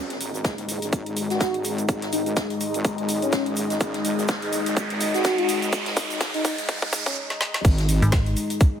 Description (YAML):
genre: bass house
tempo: 125 BPM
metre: 4/4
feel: swing 57% on 16ths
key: unclear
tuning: A4 = 440 Hz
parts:
  - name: dark analog pad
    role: sustained chords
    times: 0.3-8.8 s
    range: G#3 to D#5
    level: -28 LUFS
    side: left 2 dB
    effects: chorus, sidechain pumping
  - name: wobble bass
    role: bass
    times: 0.0-8.0 s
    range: F#1 to B1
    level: -31 LUFS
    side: equal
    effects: chorus, tube saturation, sidechain pumping, high-pass filter
  - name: riser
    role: sound effects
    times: 0.0-7.2 s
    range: none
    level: -32 LUFS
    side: right 2 dB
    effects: none
  - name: granular cloud pad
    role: texture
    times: 0.0-8.8 s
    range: G#4 to A#5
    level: -36 LUFS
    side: right 2 dB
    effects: built-in reverb, sidechain pumping
  - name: garage drum kit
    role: drums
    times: 0.1-8.7 s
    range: cabasa, crash cymbal, hi-hat, snare drum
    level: -30 LUFS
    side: equal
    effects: high-pass filter on hats, small room reverb, high-pass filter on snare, high-pass filter on perc, high-pass filter on cymbals
  - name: swinging big-band drum kit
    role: drums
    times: 0.1-8.7 s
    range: hi-hat, shaker, snare drum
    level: -36 LUFS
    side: equal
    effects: high-pass filter on hats, small room reverb, high-pass filter on snare, high-pass filter on perc, high-pass filter on room
  - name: electronic kick drum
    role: drums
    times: 0.4-8.7 s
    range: none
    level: -20 LUFS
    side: equal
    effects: high-pass filter on kick, small room reverb
  - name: airy dreamy lead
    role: melody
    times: 1.3-7.2 s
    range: C#4 to F#4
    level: -29 LUFS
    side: left 1 dB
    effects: chorus, digital delay
  - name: metallic FM bass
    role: bass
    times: 8.0-8.3 s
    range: G#1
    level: -20 LUFS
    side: equal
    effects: sidechain pumping
room: light reverb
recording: high-pass filter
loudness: -21 LUFS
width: side -9 dB against mid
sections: 0.0-7.6 A section; 7.6-8.8 B section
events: build-up 0.0-7.6; riser 0.0-7.2; filter sweep 0.0-7.6; drum fill 3.8-7.2, 7.3-7.6; drop 7.6-8.8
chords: 0.0 G#5